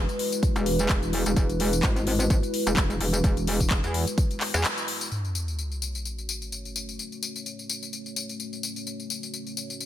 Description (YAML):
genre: bass house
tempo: 128 BPM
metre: 4/4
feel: swing 56% on 16ths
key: F# minor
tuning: A4 = 440 Hz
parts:
  - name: dark analog pad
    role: sustained chords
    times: 0.0-9.9 s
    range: G#3 to C#5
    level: -32 LUFS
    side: equal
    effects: chorus, phaser, sidechain pumping
  - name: metallic wobble bass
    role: bass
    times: 0.0-4.6 s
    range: E1 to E2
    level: -26 LUFS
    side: equal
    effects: chorus, tube saturation, sidechain pumping
  - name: house drum kit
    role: drums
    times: 0.1-9.9 s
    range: handclaps, hi-hat, tambourine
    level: -30 LUFS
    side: left 3 dB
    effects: overdrive, studio reverb
  - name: electronic kick drum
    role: drums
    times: 0.4-4.3 s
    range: none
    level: -24 LUFS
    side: equal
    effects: overdrive, studio reverb
  - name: sub drop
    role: sound effects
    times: 5.1-7.0 s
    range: none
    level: -32 LUFS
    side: equal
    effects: none
room: light reverb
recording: none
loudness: -24 LUFS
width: side -12 dB against mid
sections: 0.0-5.1 A section; 5.1-9.9 B section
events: break 4.6-5.1; band accent 4.6; impact 5.1-7.0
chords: 0.0 Eadd9; 5.1 F#m